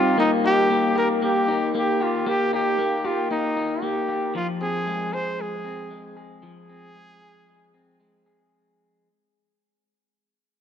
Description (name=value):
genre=indie pop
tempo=115 BPM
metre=4/4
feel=straight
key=Eb major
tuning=A4 = 440 Hz
part: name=mellow trumpet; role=melody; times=0.0-8.2 s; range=Eb4 to C5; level=-23 LUFS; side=right 1 dB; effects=none
part: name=electric guitar through a small old amp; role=arpeggios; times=0.0-9.1 s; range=F3 to Ab4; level=-25 LUFS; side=left 2 dB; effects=tape echo
room=wet plate reverb, RT60 3.6 s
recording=dreamy mix soaked in reverb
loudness=-20 LUFS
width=side -8 dB against mid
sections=0.2-8.5 A section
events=fade-out 0.2-8.5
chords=0.2 Eb; 4.3 Fm